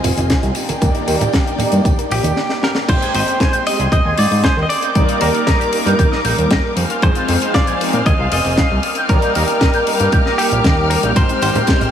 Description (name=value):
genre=nu-disco, nu disco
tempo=116 BPM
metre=4/4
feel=straight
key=Eb major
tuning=A4 = 441 Hz
part: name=dark studio string section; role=sustained chords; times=0.0-11.9 s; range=Eb3 to F6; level=-24 LUFS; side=left 1 dB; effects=sidechain pumping
part: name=soft round pluck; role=arpeggios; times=0.0-2.8, 11.2-11.9 s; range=C4 to Bb4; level=-30 LUFS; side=right 4 dB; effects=none
part: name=fat analog bass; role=bass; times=0.0-11.5 s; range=Eb1 to Bb2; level=-18 LUFS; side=equal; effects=none
part: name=tight funk drum kit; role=drums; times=0.0-11.9 s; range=crash cymbal, hi-hat, ride cymbal, snare drum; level=-22 LUFS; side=left 1 dB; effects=none
part: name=congas and tambourine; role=percussion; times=0.0-2.3, 11.2-11.9 s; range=none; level=-25 LUFS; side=right 2 dB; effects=none
part: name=electronic kick drum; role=drums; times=0.3-11.8 s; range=none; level=-16 LUFS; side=equal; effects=none
part: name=mellow synth brass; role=accompaniment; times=0.8-11.9 s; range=F3 to G5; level=-21 LUFS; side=equal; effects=chorus, phaser, sidechain pumping, analog delay
part: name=direct-recorded clean electric guitar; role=melody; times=2.1-11.9 s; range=G4 to Eb5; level=-21 LUFS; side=equal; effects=spring reverb, analog delay
part: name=electric guitar with an envelope filter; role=riff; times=3.0-11.1 s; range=Eb4 to Ab5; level=-25 LUFS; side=equal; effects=wide subtle chorus, analog delay
room=moderate huge ambient reverb, RT60 7.8 s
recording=dreamy mix soaked in reverb, small room ambience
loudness=-13 LUFS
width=side -9 dB against mid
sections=0.0-2.9 A section; 2.9-11.9 B section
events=drum fill 2.4-2.9; drop 2.9-11.9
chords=0.0 Fm7; 0.6 Ebmaj7; 2.9 Abmaj7; 4.7 Ebmaj7; 6.8 Fm7; 8.8 Ebmaj7; 11.2 Abmaj7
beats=0.30 | 0.82 1.33 1.85 2.37 | 2.89 3.40 3.92 4.44 | 4.96 5.47 5.99 6.51 | 7.03 7.54 8.06 8.58 | 9.09 9.61 10.13 10.64 | 11.16 11.68